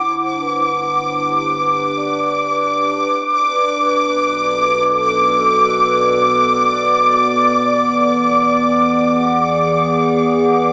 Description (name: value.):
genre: ambient.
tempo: 58 BPM.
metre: 4/4.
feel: straight.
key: G major.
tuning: A4 = 440 Hz.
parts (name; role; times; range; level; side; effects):
warbly tape-like pad; sustained chords; 0.0-10.7 s; B2 to F#5; -18 LUFS; equal; chorus, built-in reverb.
round analog bass; bass; 0.0-10.7 s; G1 to E2; -36 LUFS; equal; none.
bright studio violin section; texture; 0.0-10.7 s; D6; -14 LUFS; equal; none.
vibraphone with soft mallets; arpeggios; 0.4-10.7 s; B4 to D5; -22 LUFS; equal; tape echo.
room: wet huge ambient reverb, RT60 7.5 s.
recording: worn, warbling old tape, cassette tape, warbly pitch drift, small speaker sound.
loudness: -12 LUFS.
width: side -31 dB against mid.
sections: 0.0-10.7 A section.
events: fade-in on ambient pad 0.0-10.7; fade-in on vibraphone 0.0-10.7; fade-out on analog synth bass 0.0-10.7.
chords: 0.0 G; 3.5 Bm7; 7.7 E7.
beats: 0.42 1.45 2.49 | 3.52 4.55 5.59 6.62 | 7.66 8.69 9.73.